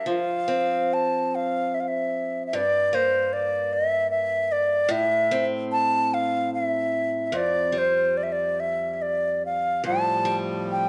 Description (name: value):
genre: celtic folk, Celtic slow air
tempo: 74 BPM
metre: 3/4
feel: rubato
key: unclear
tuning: A4 = 441 Hz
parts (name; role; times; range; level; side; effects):
- bright baroque flute; melody; 0.0-10.9 s; C5 to A5; -25 LUFS; equal; none
- picked acoustic archtop guitar; accompaniment; 0.0-10.9 s; F2 to D4; -32 LUFS; equal; none
- accordion; sustained chords; 9.8-10.9 s; A2 to G3; -32 LUFS; equal; none
room: moderate recital hall reverb, RT60 1.6 s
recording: nothing above 10.8 kHz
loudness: -24 LUFS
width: mono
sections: 0.1-10.9 A section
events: none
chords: 0.1 F5; 2.5 Gm; 4.9 Am; 7.3 Fadd9